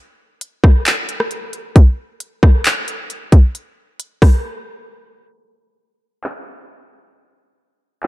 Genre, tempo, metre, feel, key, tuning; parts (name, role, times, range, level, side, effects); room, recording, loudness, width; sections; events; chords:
hip hop; 134 BPM; 4/4; half-time
trap drum kit; drums; 0.4-8.1 s; handclaps, hi-hat, kick drum, rim click; -11 LUFS; equal
little or no reverb; dark, warm production, low-pass filter; -12 LUFS; side -18 dB against mid
0.0-5.3 A section; 5.3-8.1 B section
break 4.4-5.3; filter sweep 5.3-8.1